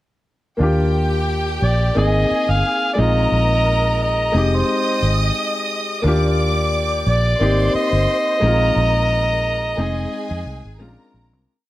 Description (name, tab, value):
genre	lush 1970s-style soul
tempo	88 BPM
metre	4/4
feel	swing 54% on 16ths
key	Eb major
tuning	A4 = 440 Hz
part	rich studio violin section	second line	0.6-11.5 s	G4 to Eb6	-24 LUFS	equal	none
part	warm concert grand piano	accompaniment	0.6-11.5 s	Ab3 to Ab4	-23 LUFS	left 2 dB	none
part	vintage muted fingered electric bass	bass	0.6-11.5 s	F1 to F2	-19 LUFS	equal	none
part	overdriven harmonica	melody	1.6-10.8 s	C5 to F5	-20 LUFS	equal	none
room	small room ambience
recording	none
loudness	-16 LUFS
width	side -15 dB against mid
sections	0.6-11.5 verse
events	fade-out 8.8-11.5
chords	0.6 Ebmaj9; 2.0 Abmaj9; 3.0 Bb9sus4; 4.3 Fm9; 6.0 Ebmaj9; 7.4 Abmaj9; 8.4 Bb9sus4; 9.8 Fm7; 10.8 Bb9